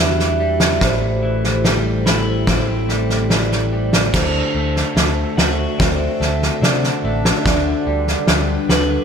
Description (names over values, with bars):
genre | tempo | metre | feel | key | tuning
post-rock | 72 BPM | 4/4 | straight | unclear | A4 = 440 Hz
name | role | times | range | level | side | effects
evolving wavetable pad | sustained chords | 0.0-9.0 s | D3 to F#5 | -24 LUFS | equal | phaser, built-in reverb
twelve-string electric guitar | arpeggios | 0.0-9.0 s | A2 to F#4 | -23 LUFS | left 3 dB | analog delay, slapback echo
vibraphone with medium mallets | arpeggios | 0.0-9.0 s | A4 to E5 | -25 LUFS | right 6 dB | analog delay, slapback echo
overdriven fingered electric bass | bass | 0.0-9.0 s | A1 to C3 | -21 LUFS | equal | none
loose indie drum kit | drums | 0.2-8.9 s | crash cymbal, kick drum, snare drum | -18 LUFS | equal | none
room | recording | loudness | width
moderate concert hall reverb, RT60 1.9 s, studio ambience | big arena sound | -15 LUFS | side -7 dB against mid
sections
0.0-4.1 A section; 4.1-9.0 A section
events
none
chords
0.0 Em7; 0.8 Am7; 4.1 D7; 7.5 Gmaj7/D